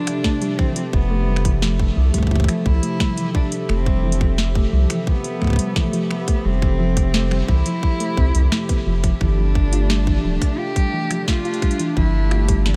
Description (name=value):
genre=IDM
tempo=87 BPM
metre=4/4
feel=straight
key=F lydian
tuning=A4 = 439 Hz
part: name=warm cello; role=melody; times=0.0-12.8 s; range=A3 to G4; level=-29 LUFS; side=equal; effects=analog delay
part: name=hollow soft pad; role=sustained chords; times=0.0-12.8 s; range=C3 to E5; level=-29 LUFS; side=equal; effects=chorus
part: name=thumb-piano-like synth pluck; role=arpeggios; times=0.0-12.8 s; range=F2 to F4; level=-28 LUFS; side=equal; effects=chorus, delay
part: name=booming analog drum machine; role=drums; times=0.1-12.8 s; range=finger snaps, hi-hat, snare drum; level=-31 LUFS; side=equal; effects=diffuse ambient delay
part: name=electronic kick drum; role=drums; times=0.2-12.6 s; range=none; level=-22 LUFS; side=equal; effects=none
part: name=round analog bass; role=bass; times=0.9-12.8 s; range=D1 to C2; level=-21 LUFS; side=equal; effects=none
room=light reverb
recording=none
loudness=-19 LUFS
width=mono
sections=0.0-12.8 A section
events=none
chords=0.0 Fmaj7; 9.2 Gsus2